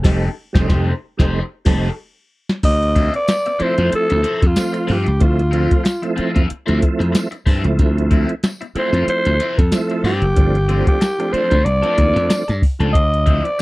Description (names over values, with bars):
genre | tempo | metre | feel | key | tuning
funk | 93 BPM | 4/4 | swing 56% on 16ths | unclear | A4 = 439 Hz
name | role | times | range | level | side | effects
biting overdriven guitar | accompaniment | 0.0-13.6 s | F3 to C5 | -26 LUFS | left 4 dB | phaser
tonewheel organ | stabs | 0.0-12.9 s | F3 to F4 | -22 LUFS | right 3 dB | chorus vibrato, fast rotary speaker
slap bass | bass | 0.0-13.4 s | F1 to G2 | -18 LUFS | equal | none
soft vintage rhythm box | drums | 0.0-13.6 s | crash cymbal, hi-hat, kick drum, snare drum | -16 LUFS | equal | none
breathy alto saxophone | melody | 2.6-13.6 s | F4 to Eb5 | -19 LUFS | equal | none
tambourine | percussion | 3.3-13.6 s | none | -35 LUFS | left 3 dB | none
room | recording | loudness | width
little or no reverb | dry, close 1970s-style studio recording | -14 LUFS | side -20 dB against mid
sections
0.0-2.6 A section; 2.6-13.6 B section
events
band accent 0.0-2.6; drum fill 2.0-2.6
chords
0.0 F9; 2.6 Dm9; 10.4 G9sus4; 12.9 Dm9